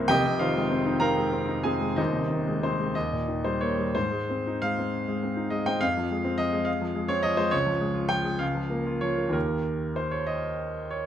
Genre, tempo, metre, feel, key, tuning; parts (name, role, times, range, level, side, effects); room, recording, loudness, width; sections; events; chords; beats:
classical, romantic character piece for solo piano; 58-72 BPM (dotted quarters); 6/8; rubato; Ab major; A4 = 440 Hz
bright grand piano; solo; 0.0-11.1 s; Eb1 to C6; -24 LUFS; equal
light reverb; -24 LUFS; side -10 dB against mid
0.0-4.0 A section; 4.0-11.1 B section
0.1 Fm7; 2.0 Ab/Eb; 3.0 Eb; 4.0 Ab; 5.8 Fm; 7.5 Db; 8.4 Bbm/Db; 9.3 Eb
| 0.11 1.03 | 1.99 2.95 | 3.96 4.94 | 5.83 6.67 | 7.53 8.42 | 9.35 10.28